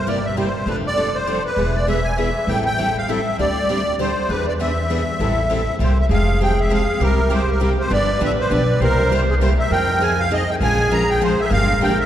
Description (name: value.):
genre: acoustic string swing (jazz manouche).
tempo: 199 BPM.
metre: 3/4.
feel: swing 59% on 8ths.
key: A minor, F harmonic minor from 6.1 s.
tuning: A4 = 440 Hz.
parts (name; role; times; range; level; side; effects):
musette accordion; melody; 0.0-12.1 s; Ab4 to Bb5; -21 LUFS; equal; none.
upright bass; bass; 0.0-12.1 s; E1 to F2; -21 LUFS; equal; none.
picked steel-string acoustic guitar; accompaniment; 0.1-11.9 s; C3 to Bb4; -25 LUFS; left 4 dB; none.
picked steel-string acoustic guitar; accompaniment; 0.1-11.9 s; C3 to B4; -26 LUFS; right 2 dB; none.
breathy clarinet; second line; 6.1-12.1 s; G4 to C5; -22 LUFS; right 1 dB; none.
room: wet cathedral reverb, RT60 4.8 s.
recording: recorded in a church or concert hall, lossy compression artefacts.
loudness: -16 LUFS.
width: side -11 dB against mid.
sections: 0.0-6.1 A section; 6.1-12.1 B section.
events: none.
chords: 0.0 C7/G; 0.7 F6; 1.6 E; 2.5 Am7; 3.4 D7sus4; 4.3 E7; 5.2 Am7; 5.8 C7; 6.1 Fmadd9; 7.0 C; 7.9 G7; 8.8 C7; 9.7 Fm7; 10.6 Bbm7; 11.5 Gm7.